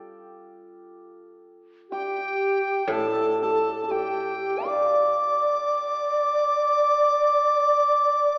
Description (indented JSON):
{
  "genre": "chinese traditional, Chinese chamber ensemble",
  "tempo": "59 BPM",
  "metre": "4/4",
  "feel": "rubato",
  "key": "D yu mode",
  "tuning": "A4 = 440 Hz",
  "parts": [
    { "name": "hammered dulcimer", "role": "second line", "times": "0.0-8.4 s", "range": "F4 to F5", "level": "-33 LUFS", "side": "equal", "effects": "none" },
    { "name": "guzheng", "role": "accompaniment", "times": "0.0-5.9 s", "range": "A2 to G3", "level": "-35 LUFS", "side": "equal", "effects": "none" },
    { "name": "hollow dizi", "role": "melody", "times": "1.9-8.4 s", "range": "G5 to D6", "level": "-26 LUFS", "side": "equal", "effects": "none" },
    { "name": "mellow xiao", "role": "second line", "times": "1.9-8.4 s", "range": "G4 to F5", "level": "-28 LUFS", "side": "equal", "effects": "none" },
    { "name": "warm velvety synth lead", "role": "second line", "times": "1.9-8.4 s", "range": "G4 to D5", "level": "-33 LUFS", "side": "equal", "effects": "none" }
  ],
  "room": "wet concert hall reverb, RT60 2.2 s",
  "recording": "recorded in a church or concert hall, AM radio sound",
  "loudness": "-23 LUFS",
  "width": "mono",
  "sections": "0.0-8.4 A section",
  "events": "none",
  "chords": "none",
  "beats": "0.90 1.91 | 2.90 3.90 4.91 5.93 | 6.95 7.99"
}